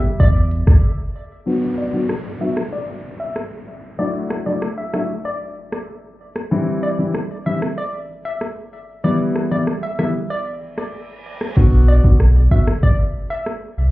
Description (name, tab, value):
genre	dancehall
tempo	95 BPM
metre	4/4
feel	straight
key	unclear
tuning	A4 = 440 Hz
part	deep house drum kit	drums	0.0-13.6 s	crash cymbal, hi-hat, kick drum, rim click, shaker	-18 LUFS	equal	overdrive
part	hollow square pluck	melody	0.2-13.4 s	D5 to E5	-27 LUFS	equal	chorus, low-pass filter, ping-pong delay
part	sub bass with octave	bass	0.2-0.8, 11.6-13.9 s	B1 to E2	-12 LUFS	equal	none
part	warm concert grand piano	accompaniment	1.5-12.6 s	E3 to F#4	-22 LUFS	left 2 dB	sidechain pumping, low-pass filter
part	downlifter and reverse cymbal	sound effects	1.5-11.6 s	none	-35 LUFS	right 1 dB	none
room	light reverb, digital ambience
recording	heard muffled through a wall, club reverb, EQ, faint mains hum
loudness	-16 LUFS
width	side -17 dB against mid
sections	0.0-1.5 A section; 1.5-11.6 B section; 11.6-13.9 C section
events	break 0.8-1.5, 10.3-11.6; filter sweep 1.5-11.6; reverse cymbal 10.7-11.6; hi-hats muted 11.6-13.9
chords	0.0 N.C.; 1.5 Bm; 4.0 Dadd9; 6.5 C; 9.0 Em; 11.6 Bm